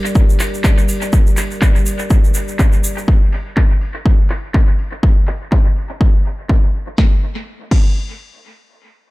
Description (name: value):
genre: acid house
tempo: 123 BPM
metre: 4/4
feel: swing 57% on 16ths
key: G minor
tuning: A4 = 440 Hz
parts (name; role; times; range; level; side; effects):
- dark analog pad; sustained chords; 0.0-3.0 s; G3 to D5; -24 LUFS; equal; chorus, sidechain pumping
- egg shaker; percussion; 0.1-3.1 s; none; -27 LUFS; right 2 dB; none
- electronic kick drum; drums; 0.2-7.9 s; none; -12 LUFS; equal; none
- booming analog drum machine; drums; 0.4-7.9 s; crash cymbal, handclaps, hi-hat, snare drum; -26 LUFS; equal; low-pass filter on hats, low-pass filter on toms, low-pass filter on snare, low-pass filter on cymbals, dub echo
room: digital ambience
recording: echo-heavy mix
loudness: -12 LUFS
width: side -20 dB against mid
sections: 0.0-7.0 A section; 7.0-9.1 B section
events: filter sweep on drum 0.0-7.0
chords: 0.0 Gm; 7.0 N.C.